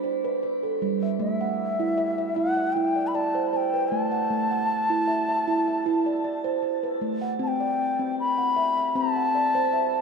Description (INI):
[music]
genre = world meditative, meditative tuned percussion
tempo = 77 BPM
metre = 4/4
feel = straight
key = A dorian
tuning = A4 = 439 Hz
[part]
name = steel tongue drum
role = arpeggios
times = 0.0-10.0 s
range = G3 to F#5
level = -25 LUFS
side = right 2 dB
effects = shimmer reverb, tape echo
[part]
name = bansuri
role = melody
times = 1.2-10.0 s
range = E5 to B5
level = -26 LUFS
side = left 2 dB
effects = shimmer reverb, tape echo
[sound]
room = wet echo chamber reverb, RT60 1.3 s, small room reverb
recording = none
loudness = -22 LUFS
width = side -5 dB against mid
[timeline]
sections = 0.0-7.4 A section; 7.4-10.0 B section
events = none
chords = 0.0 G; 1.2 Am; 7.4 C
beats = 0.42 | 1.20 1.98 2.75 3.53 | 4.31 5.08 5.86 6.64 | 7.41 8.19 8.96 9.73